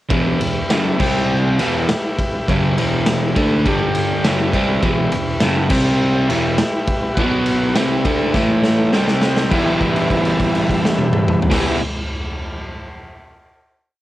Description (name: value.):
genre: garage rock duo or trio.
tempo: 102 BPM.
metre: 4/4.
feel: straight.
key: E minor.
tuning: A4 = 444 Hz.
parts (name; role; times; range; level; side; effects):
overdriven combo organ; sustained chords; 0.1-11.8 s; E4 to G5; -24 LUFS; left 1 dB; cassette tape.
crunchy overdriven guitar; riff; 0.1-11.8 s; E2 to E4; -17 LUFS; equal; cassette tape.
raw garage drum kit; drums; 0.1-11.7 s; crash cymbal, kick drum, ride cymbal, snare drum, toms; -20 LUFS; equal; none.
room: light reverb.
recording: home recording on cassette.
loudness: -15 LUFS.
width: side -15 dB against mid.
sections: 0.1-9.5 riff; 9.5-11.9 final chord.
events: drum fill 8.4-9.5; held note 9.5-11.5.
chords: 0.1 Em; 1.0 C5; 1.6 Em; 3.7 G5; 4.2 Em; 5.7 C5; 6.3 Em; 7.2 B5; 7.8 Em; 8.4 A5; 8.9 C5; 9.5 Em.